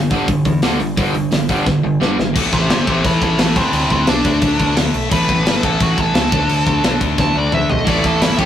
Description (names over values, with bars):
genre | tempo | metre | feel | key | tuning
punk rock | 174 BPM | 4/4 | straight | unclear | A4 = 440 Hz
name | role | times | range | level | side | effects
crunchy overdriven guitar | riff | 0.0-2.3, 7.8-8.5 s | G2 to A3 | -20 LUFS | right 6 dB | none
distorted electric guitar | riff | 0.0-8.5 s | G2 to D4 | -20 LUFS | left 4 dB | distortion
growling picked electric bass | bass | 0.0-8.5 s | G1 to E2 | -21 LUFS | equal | overdrive
tight metal drum kit | drums | 0.1-8.5 s | crash cymbal, hi-hat, kick drum, snare drum, toms | -18 LUFS | equal | none
nasal lead guitar with a parked wah | melody | 2.5-8.5 s | C4 to A5 | -19 LUFS | right 1 dB | overdrive
room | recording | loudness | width
light reverb | rough rehearsal-room recording, warm saturation | -13 LUFS | side -10 dB against mid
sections
0.0-2.4 A section; 2.4-8.5 B section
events
drum fill 1.7-2.4, 7.2-7.9; lead electric guitar solo 2.4-8.5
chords
0.0 G5; 2.4 A5; 3.6 D5; 5.1 A5; 6.3 D5; 7.9 A5